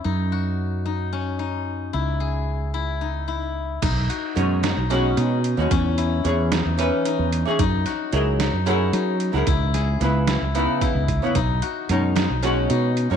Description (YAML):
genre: progressive instrumental, band music in an uneven meter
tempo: 223 BPM (eighths)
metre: 7/8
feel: straight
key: B major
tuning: A4 = 439 Hz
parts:
  - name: steel-string zither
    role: arpeggios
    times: 0.0-13.2 s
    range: C#4 to G#4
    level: -27 LUFS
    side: left 9 dB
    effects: none
  - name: mellow fretless electric bass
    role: bass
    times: 0.1-13.2 s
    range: B1 to F#3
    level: -23 LUFS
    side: right 1 dB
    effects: wide subtle chorus
  - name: trip hop sampler-style drum kit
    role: drums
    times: 3.8-13.1 s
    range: crash cymbal, hi-hat, kick drum, snare drum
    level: -27 LUFS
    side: right 5 dB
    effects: none
  - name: archtop guitar, miked and amplified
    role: accompaniment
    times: 4.4-13.2 s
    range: B2 to F#5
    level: -24 LUFS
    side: right 1 dB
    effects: double-tracked left and right
room: light reverb, digital ambience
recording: 1960s-style stereo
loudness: -20 LUFS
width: side -8 dB against mid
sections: 0.0-3.8 A section; 3.8-13.2 B section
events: none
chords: 0.1 F#5; 1.9 C#m; 3.8 B69; 5.7 E6; 7.6 F#13; 9.5 C#m7; 11.4 B69